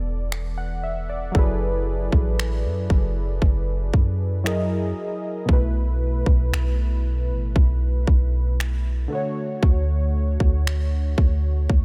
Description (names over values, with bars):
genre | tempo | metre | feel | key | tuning
contemporary R&B | 58 BPM | 4/4 | straight | F# minor | A4 = 440 Hz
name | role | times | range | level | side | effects
warm analog keys | accompaniment | 0.0-11.8 s | B2 to F#5 | -31 LUFS | equal | chorus
soft 808-style bass | bass | 0.0-11.8 s | E1 to F#2 | -25 LUFS | equal | none
trap drum kit | drums | 0.3-11.8 s | finger snaps, kick drum | -21 LUFS | equal | none
room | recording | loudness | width
little or no reverb | none | -22 LUFS | mono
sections
0.0-11.8 A section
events
none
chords
0.0 E7sus4; 1.3 F#m11; 4.5 F#13; 5.5 B7sus4; 9.1 Dmaj7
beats
0.32 | 1.35 2.38 3.42 4.45 | 5.49 6.52 7.56 8.59 | 9.62 10.66 11.69